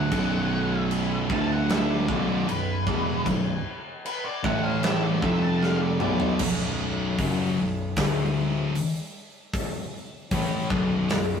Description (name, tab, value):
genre	stoner and doom metal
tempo	76 BPM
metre	4/4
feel	straight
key	B phrygian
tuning	A4 = 440 Hz
part	octave-fuzz lead guitar	melody	0.0-6.4 s	B4 to A5	-33 LUFS	left 3 dB	distortion
part	scooped high-gain guitar	riff	0.0-11.4 s	B1 to B3	-34 LUFS	right 2 dB	distortion
part	thick fuzz guitar	riff	0.0-11.4 s	B1 to B3	-27 LUFS	left 4 dB	distortion
part	thick fuzz guitar	riff	0.0-6.4 s	B1 to B3	-27 LUFS	right 6 dB	distortion
part	warm bass clarinet	bass	0.0-11.4 s	B1 to A2	-32 LUFS	equal	overdrive
part	big rock drum kit	drums	0.1-11.3 s	crash cymbal, hi-hat, kick drum, snare drum, toms	-29 LUFS	equal	none
room	wet studio reverb, RT60 0.6 s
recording	rough rehearsal-room recording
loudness	-23 LUFS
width	side -7 dB against mid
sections	0.0-6.4 A section; 6.4-11.4 B section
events	lead electric guitar solo 0.0-6.4; drum fill 5.6-6.4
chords	0.0 Bm; 1.3 D5; 2.1 B5; 4.4 A5; 5.2 F5; 6.0 Bm; 6.4 B5; 8.0 D5; 10.3 B5